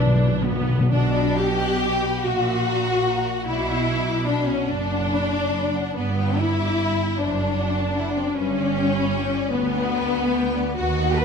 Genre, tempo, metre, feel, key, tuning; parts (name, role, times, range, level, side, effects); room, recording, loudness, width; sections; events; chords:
classical, slow romantic movement for symphony orchestra; 40-52 BPM (dotted quarters); 6/8; rubato; B minor; A4 = 439 Hz
dark clarinet; second line; 0.0-0.5 s; B4; -34 LUFS; left 5 dB
mellow bassoon; accompaniment; 0.0-0.5 s; D4; -33 LUFS; equal
rich symphonic viola section; accompaniment; 0.0-11.2 s; B3 to B4; -26 LUFS; equal
rich symphonic cello section; bass; 0.0-11.2 s; D2 to D4; -27 LUFS; right 3 dB
warm symphonic double bass section; bass; 0.0-11.2 s; F#1 to D#2; -28 LUFS; right 4 dB
timpani; percussion; 0.0-2.2 s; B2; -22 LUFS; left 1 dB
warm symphonic violin section; melody; 0.9-11.2 s; B4 to F#6; -36 LUFS; left 2 dB
rich studio violin section; second line; 0.9-11.2 s; B3 to B4; -24 LUFS; left 5 dB
moderate scoring stage reverb, RT60 2.0 s; -20 LUFS; side -6 dB against mid
0.9-11.2 A section
timpani fill 0.0-0.9
0.0 Bm; 2.2 F#/A#; 3.5 Bm; 6.0 G; 7.2 D7/F#; 8.4 G